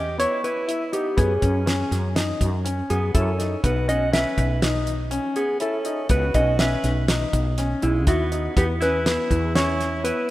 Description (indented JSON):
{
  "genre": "progressive instrumental, band music in an uneven meter",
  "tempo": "122 BPM",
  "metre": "5/4",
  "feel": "straight",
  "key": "B mixolydian",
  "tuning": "A4 = 438 Hz",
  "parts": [
    { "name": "hollow-body jazz guitar", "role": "melody", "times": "0.0-10.3 s", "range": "E4 to E5", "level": "-25 LUFS", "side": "equal", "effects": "none" },
    { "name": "edgy alto saxophone", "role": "second line", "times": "0.0-10.3 s", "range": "G#3 to B4", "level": "-32 LUFS", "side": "right 2 dB", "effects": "none" },
    { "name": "woody fretless electric bass", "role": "bass", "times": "0.0-10.1 s", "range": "B1 to F#2", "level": "-24 LUFS", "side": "equal", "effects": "ensemble chorus" },
    { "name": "warm concert grand piano", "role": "arpeggios", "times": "0.2-10.3 s", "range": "B3 to E4", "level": "-28 LUFS", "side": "left 3 dB", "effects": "none" },
    { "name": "damped 70s drum kit", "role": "drums", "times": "0.2-10.2 s", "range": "hi-hat, kick drum, snare drum", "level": "-25 LUFS", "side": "equal", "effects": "none" }
  ],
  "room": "moderate lush hall reverb, RT60 2.5 s",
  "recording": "rough home demo mix",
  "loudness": "-20 LUFS",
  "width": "side -16 dB against mid",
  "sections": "0.0-10.3 A section",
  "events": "none",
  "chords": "0.0 Em; 1.2 F#sus2; 3.6 Bsus2; 8.6 E5",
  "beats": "0.19 0.68 | 1.18 1.67 2.16 2.65 3.15 | 3.64 4.13 4.62 5.12 5.61 | 6.10 6.59 7.09 7.58 8.07 | 8.56 9.06 9.55 10.04"
}